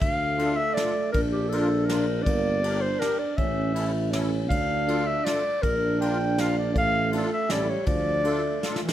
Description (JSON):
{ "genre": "alpine folk, alpine dance band", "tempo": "160 BPM", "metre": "3/4", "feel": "straight", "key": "D minor", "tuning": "A4 = 440 Hz", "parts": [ { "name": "warm clarinet", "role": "melody", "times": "0.0-8.9 s", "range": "E3 to G5", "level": "-27 LUFS", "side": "left 1 dB", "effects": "none" }, { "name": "warm euphonium", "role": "second line", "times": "0.0-8.9 s", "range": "F3 to E4", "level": "-30 LUFS", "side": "right 3 dB", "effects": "none" }, { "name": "mellow tuba", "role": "bass", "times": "0.0-8.6 s", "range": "G1 to D2", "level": "-28 LUFS", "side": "equal", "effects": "none" }, { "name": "soft brush drum kit", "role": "drums", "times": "0.0-8.9 s", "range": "kick drum, ride cymbal, snare drum", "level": "-31 LUFS", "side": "equal", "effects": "none" }, { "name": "musette accordion", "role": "accompaniment", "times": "0.4-8.8 s", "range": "C#4 to Bb4", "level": "-32 LUFS", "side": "left 2 dB", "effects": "none" } ], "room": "light reverb", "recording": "none", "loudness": "-22 LUFS", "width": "side -12 dB against mid", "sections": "0.0-8.9 A section", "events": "drum fill 8.6", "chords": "0.0 Dm; 1.1 Bb; 2.3 Gm; 3.4 A; 4.5 Dm; 5.6 Bb; 6.8 Dm/A; 7.5 A; 7.9 Dm" }